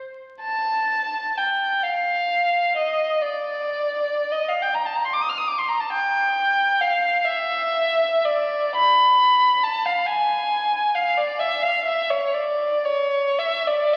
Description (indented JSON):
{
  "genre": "classical, free, expressive piece for unaccompanied violin",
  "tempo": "36-47 BPM (dotted quarters)",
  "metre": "6/8",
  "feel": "rubato",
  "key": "unclear",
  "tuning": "A4 = 442 Hz",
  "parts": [
    { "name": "dark violin", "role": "solo", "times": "0.4-14.0 s", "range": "C#5 to F6", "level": "-22 LUFS", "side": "equal", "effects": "none" }
  ],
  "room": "wet church reverb, RT60 2.5 s",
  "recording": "very old 78 rpm record, vinyl crackle",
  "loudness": "-22 LUFS",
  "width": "mono",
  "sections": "0.0-14.0 A section",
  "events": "none",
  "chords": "none",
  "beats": "| 0.42 1.85 | 3.22 4.58 | 5.92 7.25 | 8.76 10.08 | 11.41 12.87"
}